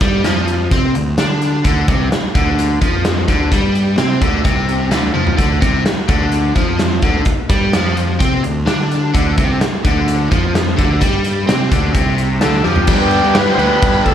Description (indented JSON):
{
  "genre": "classic rock",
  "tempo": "128 BPM",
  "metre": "4/4",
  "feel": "straight",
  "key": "unclear",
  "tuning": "A4 = 440 Hz",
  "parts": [
    { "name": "biting overdriven guitar", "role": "riff", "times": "0.0-14.1 s", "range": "G2 to G4", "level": "-17 LUFS", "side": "left 1 dB", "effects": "none" },
    { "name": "fuzz fingered electric bass", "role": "bass", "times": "0.0-14.1 s", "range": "C2 to D3", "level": "-18 LUFS", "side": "right 1 dB", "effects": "overdrive" },
    { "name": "big rock drum kit", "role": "drums", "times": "0.0-14.1 s", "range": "crash cymbal, hi-hat, kick drum, snare drum, toms", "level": "-17 LUFS", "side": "equal", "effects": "none" },
    { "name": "overdriven tonewheel organ", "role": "melody", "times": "12.4-14.1 s", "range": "G4 to C5", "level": "-17 LUFS", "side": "equal", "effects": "slow rotary speaker, slapback echo" }
  ],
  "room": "light reverb, small room ambience",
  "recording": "live gig heard through the venue's PA, club reverb",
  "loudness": "-12 LUFS",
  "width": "side -10 dB against mid",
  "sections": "0.0-12.9 A section; 12.9-14.1 B section",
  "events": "drum fill 5.2, 12.7",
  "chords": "0.0 Csus24; 12.9 G",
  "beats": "0.23 0.70 1.17 | 1.64 2.11 2.58 3.05 | 3.52 3.98 4.45 4.92 | 5.39 5.86 6.33 6.79 | 7.26 7.73 8.20 8.67 | 9.14 9.60 10.07 10.54 | 11.01 11.48 11.95 12.42 | 12.89 13.35 13.82"
}